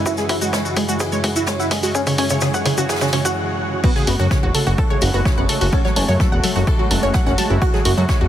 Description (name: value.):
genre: melodic techno.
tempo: 127 BPM.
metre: 4/4.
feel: straight.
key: F# minor.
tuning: A4 = 440 Hz.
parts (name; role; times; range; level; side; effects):
sweeping resonant pad; sustained chords; 0.0-8.3 s; F#2 to F#4; -26 LUFS; right 1 dB; chorus, sidechain pumping.
wide unison lead; melody; 0.1-8.2 s; C#3 to F#4; -22 LUFS; right 1 dB; wide subtle chorus, dub echo.
wide unison pluck; arpeggios; 0.1-8.3 s; E4 to A5; -23 LUFS; equal; sidechain pumping, dub echo.
electronic kick drum; drums; 0.1-8.2 s; none; -20 LUFS; equal; high-pass filter on kick.
jazz brush drum kit; drums; 0.1-8.2 s; ride cymbal, snare drum; -31 LUFS; left 2 dB; high-pass filter on cymbals, high-pass filter on snare, high-pass filter on room.
tube shaker; percussion; 0.1-3.3 s; none; -28 LUFS; left 3 dB; none.
punchy analog drum machine; drums; 0.3-8.0 s; crash cymbal, hi-hat; -25 LUFS; left 1 dB; none.
fat analog bass; bass; 4.1-8.3 s; E1 to F#2; -19 LUFS; equal; sidechain pumping.
room: light reverb, small room ambience.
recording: heavily compressed radio sound.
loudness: -16 LUFS.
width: side -11 dB against mid.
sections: 0.0-3.8 A section; 3.8-8.3 B section.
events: build-up 0.0-3.8; drum fill 0.0-3.4; filter sweep on analog synth lead 0.0-3.8; stop 3.4-3.8; drop 3.8-8.3.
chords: 0.0 C#m/F#; 3.8 F#madd9.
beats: | 0.06 0.53 1.00 1.48 | 1.95 2.42 2.89 3.36 | 3.84 4.31 4.78 5.25 | 5.73 6.20 6.67 7.14 | 7.62 8.09.